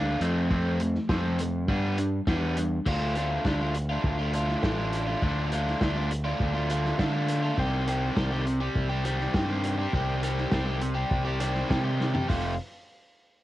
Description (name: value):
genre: indie rock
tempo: 102 BPM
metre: 4/4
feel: straight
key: unclear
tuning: A4 = 439 Hz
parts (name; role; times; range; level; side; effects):
- overdriven electric guitar; riff; 0.0-12.5 s; F2 to G4; -29 LUFS; equal; cassette tape
- growling fingered electric bass; bass; 0.0-12.6 s; F1 to D3; -29 LUFS; equal; overdrive
- vintage drum kit; drums; 0.2-12.4 s; crash cymbal, hi-hat, kick drum, snare drum, toms; -31 LUFS; equal; cassette tape
room: small room reverb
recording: home recording on cassette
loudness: -25 LUFS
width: side -15 dB against mid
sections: 0.0-2.9 A section; 2.9-12.3 B section; 12.3-13.4 C section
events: drum fill 12.0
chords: 0.2 F; 1.7 G; 2.9 Dm; 7.6 Cm; 12.3 F